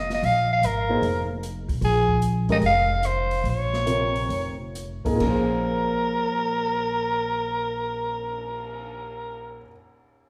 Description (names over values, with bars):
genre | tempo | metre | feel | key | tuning
modal jazz | 128-151 BPM | 4/4 | swing 67% on 8ths | Bb minor | A4 = 443 Hz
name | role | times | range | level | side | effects
growling soprano saxophone | melody | 0.0-9.6 s | Ab4 to F5 | -27 LUFS | equal | none
upright bass | bass | 0.0-9.6 s | F1 to Cb2 | -30 LUFS | equal | none
open jazz drum kit | drums | 0.1-8.9 s | crash cymbal, cymbal swell, hi-hat, kick drum, snare drum | -38 LUFS | equal | none
warm concert grand piano | accompaniment | 0.9-9.7 s | Bb2 to Db5 | -30 LUFS | equal | none
room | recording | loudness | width
wet recital hall reverb, RT60 1.9 s | recorded in a church or concert hall | -24 LUFS | mono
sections
0.0-5.2 A section; 5.2-8.9 B section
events
slowing down 1.8-5.2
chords
0.0 Bbm9